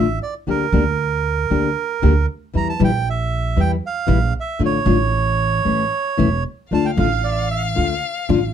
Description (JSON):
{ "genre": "tango", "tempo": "116 BPM", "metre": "4/4", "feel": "rubato", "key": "D harmonic minor", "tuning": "A4 = 440 Hz", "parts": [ { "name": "bandoneon", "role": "melody", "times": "0.0-7.9 s", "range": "Bb4 to Bb5", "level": "-22 LUFS", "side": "right 7 dB", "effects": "none" }, { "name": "nylon-string guitar", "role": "accompaniment", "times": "0.0-8.4 s", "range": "D3 to G4", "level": "-19 LUFS", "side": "left 6 dB", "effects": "none" }, { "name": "upright bass", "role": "bass", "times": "0.0-8.5 s", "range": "E1 to E2", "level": "-20 LUFS", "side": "right 2 dB", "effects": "none" }, { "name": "warm violin", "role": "second line", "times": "6.7-8.5 s", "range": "F5", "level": "-25 LUFS", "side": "left 7 dB", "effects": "none" } ], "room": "light reverb", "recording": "close, detailed microphones", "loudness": "-17 LUFS", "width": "side -9 dB against mid", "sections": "0.0-8.5 A section", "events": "none", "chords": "0.5 Gm/D; 2.5 Edim; 4.6 Dm/A; 5.7 A; 6.7 Dm" }